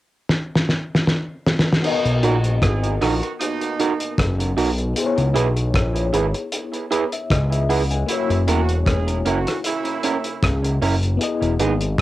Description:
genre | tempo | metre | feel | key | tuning
lovers rock reggae | 77 BPM | 4/4 | swing 55% on 16ths | B major | A4 = 435 Hz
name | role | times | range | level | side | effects
cloth-damped thuddy drum kit | drums | 0.3-12.0 s | crash cymbal, hi-hat, kick drum, rim click, snare drum | -22 LUFS | equal | cassette tape
clear horn section | second line | 1.8-10.4 s | B2 to G#4 | -27 LUFS | right 5 dB | cassette tape
FM electric piano with tremolo | accompaniment | 1.8-12.0 s | A#3 to G#5 | -26 LUFS | left 5 dB | phaser, cassette tape
fat analog bass | bass | 2.1-12.0 s | E1 to C#2 | -20 LUFS | equal | none
electric guitar through a small old amp | stabs | 2.2-11.7 s | B3 to B4 | -24 LUFS | right 5 dB | cassette tape, analog delay
room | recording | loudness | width
light reverb | home recording on cassette | -18 LUFS | side -15 dB against mid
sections
0.0-1.8 A section; 1.8-12.0 B section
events
drum fill 0.3-1.8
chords
0.0 N.C.; 1.8 Bmaj7; 5.0 C#m7; 8.1 F#7; 11.2 Emaj7

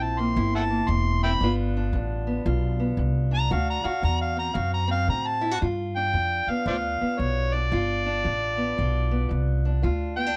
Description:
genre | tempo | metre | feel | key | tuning
acoustic country blues, solo or duo | 114 BPM | 4/4 | swing 64% on 8ths | G mixolydian | A4 = 440 Hz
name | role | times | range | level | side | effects
overdriven harmonica | melody | 0.0-10.4 s | C5 to C6 | -29 LUFS | equal | plate reverb
fingerpicked steel-string acoustic guitar | accompaniment | 0.0-10.4 s | G2 to F#4 | -32 LUFS | equal | none
upright bass | bass | 0.0-10.4 s | E1 to A2 | -28 LUFS | equal | none
room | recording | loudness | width
light reverb | none | -25 LUFS | mono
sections
0.0-5.6 A section; 5.6-10.4 B section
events
harmonica solo 0.0-5.6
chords
0.0 C7; 1.4 G7; 3.5 D7; 5.6 G7

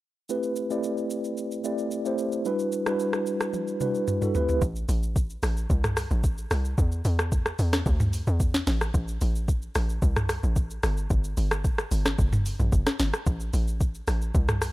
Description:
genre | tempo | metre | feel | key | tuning
amapiano | 111 BPM | 4/4 | straight | A dorian | A4 = 445 Hz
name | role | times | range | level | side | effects
mellow tine electric piano | accompaniment | 0.3-4.6 s | G3 to D5 | -26 LUFS | equal | medium stereo tremolo
smooth R&B drum kit | drums | 0.3-14.7 s | hi-hat, kick drum, rim click, shaker, snare drum, toms | -26 LUFS | equal | none
hollow log drum bass | bass | 4.6-14.7 s | F#1 to E2 | -26 LUFS | equal | none
room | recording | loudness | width
digital ambience | none | -24 LUFS | side -17 dB against mid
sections
0.3-4.6 A section; 4.6-14.7 B section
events
drum fill 3.5-4.6; drop 4.6-14.7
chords
0.3 Am9; 2.5 Em9; 4.3 Am9; 4.6 Am; 6.8 Dsus2; 8.7 Am; 10.8 N.C.; 13.3 Am

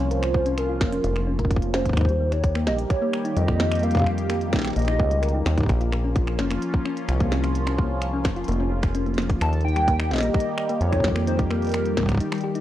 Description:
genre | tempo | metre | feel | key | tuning
IDM | 129 BPM | 4/4 | straight | unclear | A4 = 440 Hz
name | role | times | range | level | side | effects
warbly nostalgic lead | melody | 0.0-5.4, 9.4-12.2 s | Bb4 to A5 | -27 LUFS | equal | analog chorus, analog delay
phased analog pad | sustained chords | 0.0-12.6 s | Eb3 to G4 | -29 LUFS | equal | phaser, chorus
thumb-piano-like synth pluck | arpeggios | 0.0-12.6 s | G3 to Bb4 | -30 LUFS | left 2 dB | chorus, cassette tape, tape echo
deep acid bass | bass | 0.0-12.2 s | F1 to F2 | -24 LUFS | equal | none
glitchy drum kit | drums | 0.1-12.6 s | finger snaps, hi-hat, snare drum | -30 LUFS | right 1 dB | studio ambience
electronic kick drum | drums | 0.3-12.2 s | none | -22 LUFS | equal | studio ambience
room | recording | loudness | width
little or no reverb | dry, gritty hardware recording, transformer saturation, cassette tape | -20 LUFS | side -13 dB against mid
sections
0.0-12.6 A section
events
break 12.2-12.6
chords
0.0 Bbm; 2.0 Eb; 5.7 Bbm; 9.4 Eb

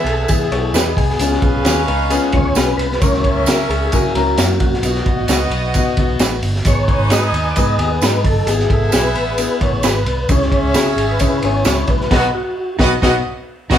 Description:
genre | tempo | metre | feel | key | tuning
uptempo 1960s-style soul | 132 BPM | 4/4 | straight | E major | A4 = 440 Hz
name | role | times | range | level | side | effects
percussive tonewheel organ | melody | 0.0-12.8 s | F#4 to D#5 | -21 LUFS | left 1 dB | chorus vibrato, fast rotary speaker
clear horn section | second line | 0.0-13.8 s | B3 to G#5 | -22 LUFS | right 1 dB | none
warm upright piano | accompaniment | 0.0-13.8 s | F#3 to B4 | -22 LUFS | left 4 dB | none
vintage muted fingered electric bass | bass | 0.0-13.8 s | G1 to E3 | -20 LUFS | right 1 dB | none
crunchy breakbeat drum kit | drums | 0.1-13.8 s | crash cymbal, hi-hat, kick drum, ride cymbal, snare drum | -18 LUFS | equal | none
tambourine | percussion | 0.3-11.8 s | none | -29 LUFS | right 6 dB | none
electric guitar through a small old amp | riff | 0.5-4.8, 7.6-8.5, 11.2-12.3 s | F#3 to C#5 | -23 LUFS | left 4 dB | none
direct-recorded clean electric guitar | stabs | 0.7-13.8 s | C#4 to C#5 | -25 LUFS | right 4 dB | none
room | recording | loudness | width
moderate large studio reverb, RT60 1.0 s | band playing live in one room | -13 LUFS | side -10 dB against mid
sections
0.0-13.8 A section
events
band accent 12.1-13.8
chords
0.0 E; 1.2 C#7; 3.0 F#7/C#; 4.8 B; 6.7 G#m; 8.5 E/G#; 10.3 C#m; 12.1 B

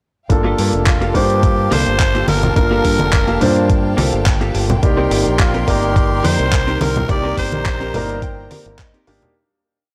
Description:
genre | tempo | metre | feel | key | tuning
nu-disco, nu disco | 106 BPM | 4/4 | straight | G minor | A4 = 440 Hz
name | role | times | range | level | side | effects
warm grand piano | accompaniment | 0.3-9.3 s | Bb3 to D5 | -23 LUFS | equal | sidechain pumping
clear studio violin section | sustained chords | 0.3-9.3 s | Bb4 to C6 | -30 LUFS | equal | sidechain pumping
modern bright fingered electric bass | bass | 0.3-9.2 s | F1 to G2 | -22 LUFS | equal | sidechain pumping
dusty soul sampler-style drum kit | drums | 0.3-9.3 s | handclaps, hi-hat | -26 LUFS | equal | overdrive
electronic kick drum | drums | 0.3-8.9 s | none | -19 LUFS | equal | overdrive
direct-recorded clean electric guitar | riff | 0.4-9.3 s | Bb3 to Bb5 | -26 LUFS | equal | lush chorus
breathy tenor saxophone | melody | 0.9-8.5 s | F4 to D5 | -24 LUFS | equal | analog delay
congas | percussion | 1.7-9.3 s | none | -24 LUFS | equal | none
room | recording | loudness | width
studio reverb | dry, gritty hardware recording, transformer saturation | -16 LUFS | mono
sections
0.3-9.4 drop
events
drop 0.3-9.4; fade-out 6.3-9.4; clean electric guitar fill 7.7-9.4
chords
0.3 Gm9; 4.8 Cm7

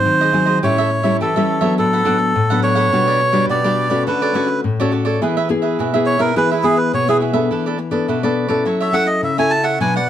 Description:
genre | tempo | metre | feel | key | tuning
samba | 105 BPM | 4/4 | straight | unclear | A4 = 439 Hz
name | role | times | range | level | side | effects
melodica | melody | 0.0-10.1 s | E4 to A5 | -17 LUFS | right 2 dB | none
nylon-string guitar | accompaniment | 0.0-10.1 s | A2 to A4 | -18 LUFS | left 3 dB | none
cavaquinho | accompaniment | 0.2-10.1 s | D4 to F#5 | -22 LUFS | right 6 dB | none
room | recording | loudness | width
moderate large studio reverb, RT60 1.0 s | dark, warm production | -14 LUFS | side -10 dB against mid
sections
0.0-10.1 A section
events
melodica solo 0.0-10.1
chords
0.0 G#7; 0.6 A7; 1.8 D6/A; 2.9 Gmaj7/B; 4.1 Dmaj7; 5.2 E; 7.5 E7sus4; 8.7 F#m7

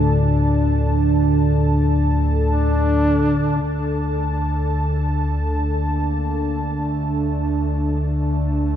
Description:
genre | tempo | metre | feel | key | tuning
ambient | 56 BPM | 4/4 | straight | unclear | A4 = 439 Hz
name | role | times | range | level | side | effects
dark analog pad | sustained chords | 0.0-8.8 s | D4 to A5 | -22 LUFS | right 1 dB | chorus
analog drone | drone | 0.0-8.8 s | D2 to A2 | -19 LUFS | left 1 dB | wide subtle chorus
mellow duduk | melody | 2.5-8.8 s | A3 to D4 | -26 LUFS | equal | ping-pong delay
room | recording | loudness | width
moderate huge ambient reverb, RT60 9.0 s | dark, warm production | -17 LUFS | side -10 dB against mid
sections
0.0-3.6 A section; 3.6-8.8 B section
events
none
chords
0.0 D5

